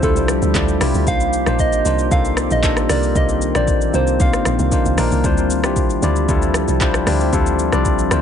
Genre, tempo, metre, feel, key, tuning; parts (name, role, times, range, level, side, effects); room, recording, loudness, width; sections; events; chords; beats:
amapiano; 115 BPM; 4/4; straight; D phrygian; A4 = 440 Hz
soft struck synth lead; melody; 0.0-5.0 s; A4 to F5; -22 LUFS; right 2 dB; chorus, analog delay
bell-like tine electric piano; accompaniment; 0.0-8.2 s; G3 to D5; -20 LUFS; left 4 dB; analog delay
deep dark ambient pad; sustained chords; 0.0-8.2 s; Eb3 to E5; -23 LUFS; equal; chorus, built-in reverb
deep log drum bass; bass; 0.0-8.2 s; Bb1 to D2; -20 LUFS; right 1 dB
afro-pop drum kit; drums; 0.0-8.2 s; handclaps, hi-hat, kick drum, rim click, shaker; -20 LUFS; equal
digital ambience; echo-heavy mix, nothing above 10.8 kHz; -14 LUFS; side -8 dB against mid
0.0-8.2 A section
0.0 Dm11; 1.1 Cm11; 5.2 Dm11
0.02 0.55 | 1.07 1.59 2.11 2.63 | 3.15 3.68 4.20 4.72 | 5.24 5.76 6.29 6.81 | 7.33 7.85